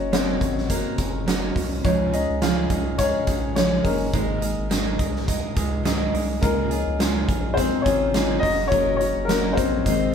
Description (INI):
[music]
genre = piano-driven pop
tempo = 105 BPM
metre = 4/4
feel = swing 56% on 16ths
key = Db major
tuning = A4 = 441 Hz
[part]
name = dark upright piano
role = accompaniment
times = 0.0-10.1 s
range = Eb3 to F5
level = -24 LUFS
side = left 4 dB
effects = none
[part]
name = fingerpicked steel-string acoustic guitar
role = riff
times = 0.0-10.1 s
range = Ab2 to C5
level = -26 LUFS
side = right 6 dB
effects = none
[part]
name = round analog bass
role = bass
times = 0.0-10.1 s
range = Gb1 to Db2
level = -29 LUFS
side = equal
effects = none
[part]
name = huge arena drum kit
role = drums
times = 0.1-10.0 s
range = hi-hat, kick drum, snare drum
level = -25 LUFS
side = equal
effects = none
[sound]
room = moderate large studio reverb, RT60 1.1 s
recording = band playing live in one room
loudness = -20 LUFS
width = side -7 dB against mid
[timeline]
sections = 0.0-10.1 A section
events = upright piano solo 0.0-10.1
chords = 0.0 Gb; 1.8 Dbadd9; 4.1 Absus2; 6.4 Dbadd9; 8.4 Gb